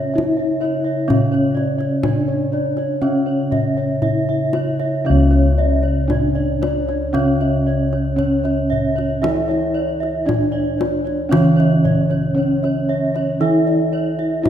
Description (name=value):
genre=Javanese gamelan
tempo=58 BPM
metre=4/4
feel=uneven beats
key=unclear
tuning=A4 = 438 Hz
part: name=gamelan-type bronze metallophone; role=melody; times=0.0-14.5 s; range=C#4 to E4-30c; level=-21 LUFS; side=equal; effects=none
part: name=gamelan-type bronze metallophone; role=accompaniment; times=0.0-14.5 s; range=C#3 to E3-30c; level=-24 LUFS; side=right 1 dB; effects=none
part: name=gamelan-type bossed gongs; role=arpeggios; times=0.0-14.5 s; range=C#5 to E5-30c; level=-25 LUFS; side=left 1 dB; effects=none
part: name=gamelan-type bronze metallophone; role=arpeggios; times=0.0-14.5 s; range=C#5 to E5-30c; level=-27 LUFS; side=right 4 dB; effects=none
part: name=gamelan-type bossed gongs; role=bass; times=0.0-14.5 s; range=C#2 to E4-30c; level=-21 LUFS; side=equal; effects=none
part: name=kendang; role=percussion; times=0.2-14.5 s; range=none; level=-25 LUFS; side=left 2 dB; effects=none
room=moderate concert hall reverb, RT60 2.2 s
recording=minimal, uncompressed stereo recording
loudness=-16 LUFS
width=side -10 dB against mid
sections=0.0-5.0 A section; 5.0-14.5 B section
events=none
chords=none